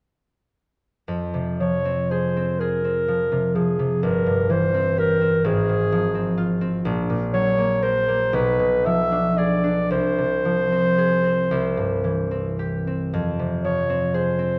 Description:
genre	classical, romantic duo for clarinet and harp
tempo	36-44 BPM (dotted quarters)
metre	6/8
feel	rubato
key	F minor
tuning	A4 = 440 Hz
part	concert harp	accompaniment	1.1-14.6 s	G1 to Bb4	-24 LUFS	equal	none
part	clear clarinet	melody	1.6-14.6 s	Ab4 to E5	-24 LUFS	equal	none
room	wet recital hall reverb, RT60 1.4 s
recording	none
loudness	-22 LUFS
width	mono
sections	1.1-14.6 A section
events	none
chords	1.1 Fm; 4.0 C/G; 5.5 Fm/Ab; 6.9 Gb/Bb; 8.3 Bdim7; 9.9 Fm/C; 11.5 C; 13.1 Fm

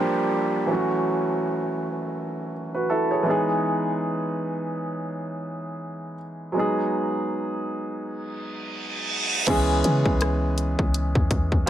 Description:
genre	contemporary R&B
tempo	82 BPM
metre	4/4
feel	swing 58% on 16ths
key	unclear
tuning	A4 = 439 Hz
part	warm grand piano	accompaniment	0.0-11.7 s	E3 to C#5	-24 LUFS	right 1 dB	none
part	downlifter and reverse cymbal	sound effects	0.0-9.5 s	none	-31 LUFS	right 1 dB	none
part	clean 808-style bass	bass	9.5-11.7 s	C#2 to C#3	-24 LUFS	left 1 dB	none
part	trap drum kit	drums	9.5-11.7 s	crash cymbal, hi-hat, kick drum, rim click	-24 LUFS	left 1 dB	none
room	little or no reverb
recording	none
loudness	-22 LUFS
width	side -11 dB against mid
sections	0.0-9.5 A section; 9.5-11.7 B section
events	reverse cymbal 8.6-9.5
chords	0.0 Gm7; 0.7 F#m7; 3.3 Emaj7; 6.5 G#m7; 9.5 C#m7

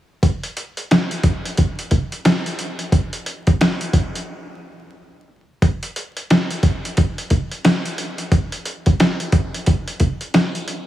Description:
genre	hip hop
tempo	89 BPM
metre	4/4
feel	swing 63% on 16ths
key	none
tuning	none
part	boom bap sampler-style drum kit	drums	0.2-10.9 s	hi-hat, kick drum, snare drum	-17 LUFS	equal	overdrive
room	light reverb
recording	heavily compressed radio sound, multiband compression, vinyl crackle, tape stop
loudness	-17 LUFS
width	side -13 dB against mid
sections	0.2-5.6 A section; 5.6-10.9 B section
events	break 4.3-5.6; tape stop 5.3-5.6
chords	none

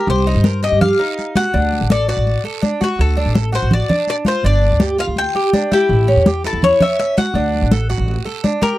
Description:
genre	latin, Cuban son and guajira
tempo	165 BPM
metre	4/4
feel	straight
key	unclear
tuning	A4 = 440 Hz
part	Cuban tres	melody	0.0-8.8 s	F#4 to G5	-19 LUFS	left 3 dB	none
part	Cuban tres	arpeggios	0.0-8.8 s	C#4 to Bb4	-20 LUFS	right 2 dB	none
part	upright bass	bass	0.1-8.2 s	G1 to G2	-17 LUFS	equal	none
part	congas	percussion	0.1-8.8 s	none	-18 LUFS	left 1 dB	none
part	guiro	percussion	0.1-8.8 s	none	-32 LUFS	right 19 dB	none
room	light reverb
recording	dry, close 1970s-style studio recording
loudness	-14 LUFS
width	side -16 dB against mid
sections	0.0-8.8 A section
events	none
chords	0.1 Cm7; 1.5 D; 4.4 G5; 5.9 A7; 7.3 D

